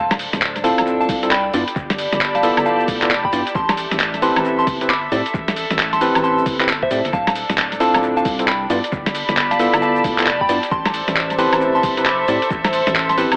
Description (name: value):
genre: UK garage, two-step garage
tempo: 134 BPM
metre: 4/4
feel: swing 63% on 16ths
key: A minor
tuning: A4 = 440 Hz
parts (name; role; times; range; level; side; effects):
- soft synth bell; melody; 0.0-13.3 s; C5 to D6; -24 LUFS; equal; chorus, tape echo
- rubbery square bass; bass; 0.0-13.4 s; D1 to A2; -31 LUFS; equal; none
- warm studio string section; texture; 0.0-13.4 s; D4 to B5; -25 LUFS; equal; sidechain pumping
- boom bap sampler-style drum kit; drums; 0.1-13.4 s; cabasa, handclaps, hi-hat, snare drum, woodblock; -23 LUFS; equal; analog delay
- overdriven tine electric piano; stabs; 0.6-13.4 s; B3 to D5; -23 LUFS; equal; vintage 12-bit sampler grit, dub echo
- electronic kick drum; drums; 1.1-12.6 s; none; -29 LUFS; equal; none
room: wet spring reverb, RT60 1.1 s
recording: echo-heavy mix, vinyl crackle, AM radio sound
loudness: -18 LUFS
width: mono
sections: 0.0-13.4 A section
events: none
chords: 0.0 Dm7; 1.5 G13; 3.5 Am9; 7.1 Dm7; 8.7 G13; 10.7 Am9